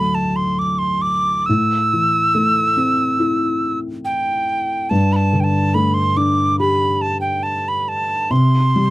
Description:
celtic folk, Celtic slow air; 70 BPM; 4/4; rubato; A4 = 440 Hz
breathy mid whistle; melody; 0.0-8.9 s; G5 to E6; -18 LUFS; right 2 dB
felt-muted upright piano; accompaniment; 0.0-8.9 s; D2 to G4; -18 LUFS; left 1 dB
moderate booth ambience, RT60 0.2 s; dry, close 1970s-style studio recording; -15 LUFS; side -18 dB against mid
0.0-8.9 A section
0.0 D; 1.5 Am; 4.9 Gsus2; 8.3 C5
0.61 | 1.49 2.35 3.21 4.07 | 4.91 5.74 6.58 7.44 | 8.31

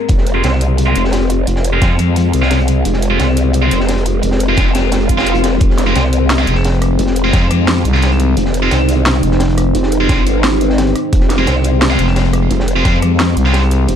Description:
dark technical drum and bass; 174 BPM; 4/4; straight; F minor; A4 = 438 Hz
deep dark ambient pad; sustained chords; 0.0-14.0 s; Ab3 to Bb4; -17 LUFS; left 2 dB; chorus, built-in reverb, sidechain pumping
growl bass; bass; 0.1-14.0 s; F1 to F2; -15 LUFS; equal; chorus, overdrive, sidechain pumping
crunchy breakbeat drum kit; drums; 0.1-14.0 s; hi-hat, snare drum; -25 LUFS; equal; high-pass filter on hats, high-pass filter on snare, high-pass filter on room
drum and bass drum kit; drums; 0.1-14.0 s; hi-hat, rim click, snare drum; -19 LUFS; equal; overdrive
electronic kick drum; drums; 0.1-1.9, 4.6-7.4, 10.1-12.9 s; -13 LUFS; equal; overdrive
heavy high-gain guitar; stabs; 0.3-13.6 s; Ab3 to F4; -20 LUFS; right 1 dB; distortion, low-pass filter, ping-pong delay
swell; sound effects; 5.0-5.6 s; -23 LUFS; right 2 dB
growling FM bass; bass; 6.5-9.7, 12.0-13.9 s; F1 to C2; -13 LUFS; equal
little or no reverb; dark, warm production; -11 LUFS; side -8 dB against mid
0.0-14.0 A section
swell 5.0-5.6
0.0 Fm
| 0.09 0.44 0.78 1.13 | 1.47 1.82 2.16 2.51 | 2.85 3.20 3.54 3.89 | 4.23 4.58 4.92 5.27 | 5.61 5.96 6.30 6.64 | 6.99 7.33 7.68 8.02 | 8.37 8.71 9.06 9.40 | 9.75 10.09 10.44 10.78 | 11.13 11.47 11.82 12.16 | 12.51 12.85 13.20 13.54 | 13.89

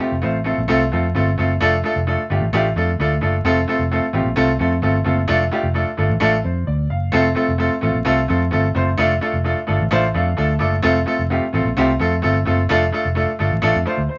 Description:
uptempo 1960s-style soul; 130 BPM; 4/4; straight; F major; A4 = 440 Hz
warm upright piano; accompaniment; 0.0-14.2 s; A3 to D6; -20 LUFS; equal
vintage muted fingered electric bass; bass; 0.1-14.1 s; F1 to F2; -23 LUFS; equal
light reverb; vinyl crackle, nothing above 7.5 kHz; -18 LUFS; mono
0.0-14.2 A section
upright piano fill 9.9-10.8
0.0 F; 1.6 Dm/F; 3.4 F; 5.3 Dm/F; 7.1 F; 9.0 Dm/F; 10.8 F; 12.7 Dm/F
0.23 0.69 1.15 | 1.61 2.07 2.53 2.99 | 3.45 3.91 4.37 4.83 | 5.29 5.75 6.21 6.67 | 7.14 7.60 8.06 8.52 | 8.99 9.45 9.91 10.38 | 10.84 11.30 11.77 12.23 | 12.70 13.16 13.62 14.09

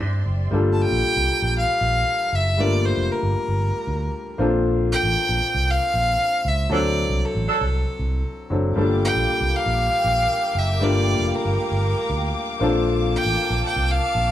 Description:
disco; 116 BPM; 4/4; straight; G dorian; A4 = 440 Hz
warm grand piano; accompaniment; 0.0-14.3 s; F#3 to Bb4; -25 LUFS; left 3 dB
rich studio string section; sustained chords; 0.0-0.5, 8.8-14.3 s; Bb3 to D6; -30 LUFS; equal
fingered electric bass; bass; 0.0-14.3 s; F1 to G2; -23 LUFS; right 1 dB
rich fiddle; melody; 0.7-14.3 s; A4 to A5; -23 LUFS; equal
mellow horn section; stabs; 6.7-7.6 s; F#3 to A4; -25 LUFS; right 4 dB
moderate large studio reverb, RT60 1.1 s; band playing live in one room; -19 LUFS; side -12 dB against mid
0.5-14.3 A section
band accent 6.7-8.8
0.0 D9sus4; 0.5 Gm7; 4.4 Bbmaj7; 6.7 D7; 8.8 Gm7; 12.6 Bbmaj7
0.00 | 0.52 1.03 1.55 2.06 | 2.58 3.10 3.61 4.13 | 4.64 5.16 5.67 6.19 | 6.71 7.22 7.74 8.25 | 8.76 9.28 9.79 10.30 | 10.82 11.33 11.84 12.35 | 12.87 13.38 13.89

